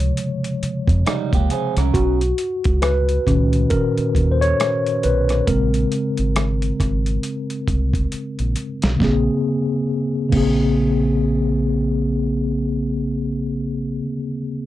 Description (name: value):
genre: R&B, neo-soul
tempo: 68 BPM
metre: 4/4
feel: swing 59% on 16ths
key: Bb minor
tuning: A4 = 439 Hz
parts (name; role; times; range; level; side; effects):
- mellow tine electric piano; accompaniment; 0.0-14.7 s; A#2 to Db5; -20 LUFS; left 1 dB; medium stereo tremolo
- deep dub fingered electric bass; bass; 0.0-14.0 s; Ab1 to F2; -21 LUFS; equal; none
- dusty soul sampler-style drum kit; drums; 0.0-10.6 s; crash cymbal, hi-hat, kick drum, rim click, snare drum; -23 LUFS; equal; overdrive
- electric guitar through a small old amp; second line; 1.1-2.2 s; G3 to Bb4; -23 LUFS; right 9 dB; none
room: little or no reverb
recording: dry, close 1970s-style studio recording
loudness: -17 LUFS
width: side -14 dB against mid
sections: 0.0-9.0 A section; 9.0-12.5 B section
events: tine electric piano solo 0.0-9.0; drum fill 8.1-9.0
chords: 0.0 Eb9sus4 (rootless); 1.9 Bmaj9; 5.5 Bbm9